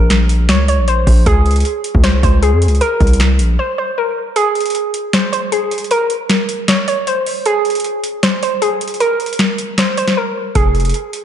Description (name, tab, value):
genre	hip hop, trap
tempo	155 BPM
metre	4/4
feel	half-time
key	unclear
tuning	A4 = 440 Hz
part	soft round pluck	melody	0.0-11.2 s	Ab4 to Db5	-17 LUFS	right 1 dB	chorus, analog delay
part	hard-hitting 808-style bass	bass	0.0-3.6, 10.6-10.9 s	F1 to F2	-13 LUFS	equal	none
part	booming analog drum machine	drums	0.1-11.2 s	finger snaps, hi-hat, kick drum, snare drum	-16 LUFS	equal	overdrive
room	moderate lush hall reverb, RT60 1.8 s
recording	dreamy mix soaked in reverb, nothing above 11.0 kHz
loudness	-12 LUFS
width	side -10 dB against mid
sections	0.0-11.2 A section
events	break 3.6-4.4, 4.4-10.6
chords	0.0 Bbm; 1.3 Db5; 2.8 Bbsus2; 4.4 N.C.; 10.6 Fm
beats	0.10 0.49 0.88 | 1.26 1.65 2.04 2.42 | 2.81 3.20 3.58 3.97 | 4.36 4.75 5.13 5.52 | 5.91 6.29 6.68 7.07 | 7.46 7.84 8.23 8.62 | 9.01 9.39 9.78 10.17 | 10.55 10.94